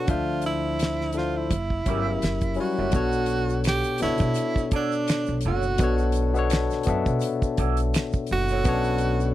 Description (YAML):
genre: R&B, neo-soul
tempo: 84 BPM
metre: 4/4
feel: swing 55% on 16ths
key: B minor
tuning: A4 = 440 Hz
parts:
  - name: breathy tenor saxophone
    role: melody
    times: 0.0-9.3 s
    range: D4 to G4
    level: -27 LUFS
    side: right 3 dB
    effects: tape echo
  - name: barky tine electric piano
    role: accompaniment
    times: 0.0-9.3 s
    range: B2 to E5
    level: -26 LUFS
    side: left 5 dB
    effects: none
  - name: upright bass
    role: bass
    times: 0.1-9.3 s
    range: F#1 to B2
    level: -27 LUFS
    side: right 1 dB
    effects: none
  - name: damped 70s drum kit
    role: drums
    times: 0.1-9.2 s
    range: hi-hat, kick drum, snare drum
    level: -26 LUFS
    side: equal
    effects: none
  - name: electric guitar through a small old amp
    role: second line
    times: 1.9-8.7 s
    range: C#4 to F#5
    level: -32 LUFS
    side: right 9 dB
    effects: wah
  - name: tube shaker and finger snaps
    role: percussion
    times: 2.9-9.3 s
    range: none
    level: -40 LUFS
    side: right 24 dB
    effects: none
room: little or no reverb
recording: dry, close 1970s-style studio recording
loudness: -22 LUFS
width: side -14 dB against mid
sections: 0.0-2.9 A section; 2.9-9.3 B section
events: none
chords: 0.1 Dm9; 1.5 F#7b9; 2.9 Bm9